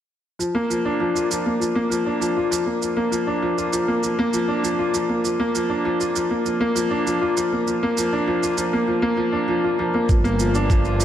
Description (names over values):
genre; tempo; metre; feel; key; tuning
piano and strings electronica; 99 BPM; 4/4; straight; unclear; A4 = 440 Hz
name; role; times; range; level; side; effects
clear grand piano; riff; 0.4-11.0 s; F3 to F4; -20 LUFS; equal; tape echo
shaker; drums; 0.4-11.0 s; none; -30 LUFS; right 6 dB; overdrive, studio reverb
warm studio string section; sustained chords; 10.1-11.0 s; none; barely audible; none; none
rich symphonic double bass section; bass; 10.1-11.0 s; G1; -22 LUFS; right 1 dB; sidechain pumping
electronic kick drum; drums; 10.1-10.8 s; none; -18 LUFS; equal; studio reverb
room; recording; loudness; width
moderate concert hall reverb, RT60 1.9 s, studio ambience; none; -19 LUFS; side -10 dB against mid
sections
0.4-10.1 A section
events
none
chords
0.4 Fsus4; 10.1 Gm7